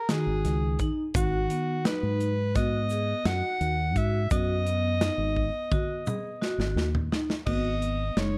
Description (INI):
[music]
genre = progressive instrumental, band music in an uneven meter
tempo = 171 BPM (eighths)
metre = 9/8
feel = straight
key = unclear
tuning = A4 = 439 Hz
[part]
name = breathy soprano saxophone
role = melody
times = 0.0-8.4 s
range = F#4 to F#5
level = -34 LUFS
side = equal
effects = analog delay
[part]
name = mellow electric guitar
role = second line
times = 0.1-8.4 s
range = D#3 to D#4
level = -37 LUFS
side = equal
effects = none
[part]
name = vibraphone with hard mallets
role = arpeggios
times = 0.1-8.4 s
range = B3 to G#4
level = -36 LUFS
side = equal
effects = none
[part]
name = modern studio drum kit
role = drums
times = 0.1-8.3 s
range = crash cymbal, hi-hat, kick drum, snare drum, toms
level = -32 LUFS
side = equal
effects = none
[part]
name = fingered electric bass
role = bass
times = 0.3-8.4 s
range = F#1 to G#2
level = -31 LUFS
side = equal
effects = none
[part]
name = egg shaker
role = percussion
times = 1.2-6.4 s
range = none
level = -48 LUFS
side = equal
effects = none
[sound]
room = light reverb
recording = dark, warm production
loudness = -27 LUFS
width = mono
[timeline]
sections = 0.0-7.5 A section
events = drum fill 5.4-7.5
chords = 0.0 G#7(no3); 1.2 B/G#; 7.5 G#m7